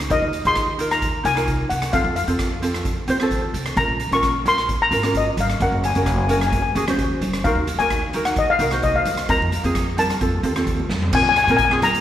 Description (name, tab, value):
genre	calypso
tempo	130 BPM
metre	4/4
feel	straight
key	Bb minor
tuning	A4 = 439 Hz
part	upright bass	bass	0.0-12.0 s	Gb1 to Bb2	-26 LUFS	right 1 dB	none
part	street-band drum kit	drums	0.0-12.0 s	crash cymbal, hi-hat, kick drum, rim click, snare drum, toms	-26 LUFS	right 1 dB	none
part	steel pan	melody	0.1-12.0 s	Eb5 to Db6	-20 LUFS	left 3 dB	slapback echo
part	ukulele	accompaniment	0.1-12.0 s	C4 to C5	-24 LUFS	right 1 dB	slapback echo
part	congas	percussion	4.1-11.9 s	none	-31 LUFS	equal	slapback echo
room	moderate plate reverb, RT60 1.8 s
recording	live gig heard through the venue's PA, recital hall reverb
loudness	-17 LUFS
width	side -11 dB against mid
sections	0.0-11.1 A section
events	drum fill 10.9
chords	0.1 Ebsus2; 1.9 F; 3.8 Bbm; 5.6 Gbadd9; 7.5 Ebm; 9.3 Fsus4; 10.2 F; 11.1 Bbsus2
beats	| 0.11 0.57 1.03 1.48 | 1.94 2.40 2.86 3.31 | 3.77 4.23 4.69 5.15 | 5.61 6.07 6.53 6.99 | 7.45 7.91 8.37 8.83 | 9.29 9.76 10.22 10.68 | 11.14 11.60